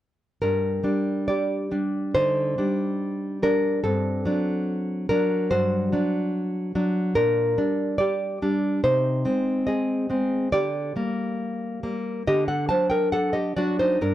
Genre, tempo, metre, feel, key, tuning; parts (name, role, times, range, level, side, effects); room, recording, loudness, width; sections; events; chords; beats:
romantic piece for solo classical guitar; 71 BPM; 4/4; rubato; G minor; A4 = 439 Hz
nylon-string guitar; solo; 0.4-14.1 s; G2 to A5; -22 LUFS; equal
small room ambience; dry, close 1970s-style studio recording; -22 LUFS; side -13 dB against mid
0.4-14.1 A section
0.4 Gm; 3.8 D7/G; 7.2 Gm/Bb; 8.8 Ab/C; 10.5 Gm/D; 12.3 D
| 0.42 1.28 2.14 3.00 | 3.84 4.68 5.51 6.35 | 7.18 8.00 8.84 9.67 | 10.53 11.40 12.26 13.12 | 14.02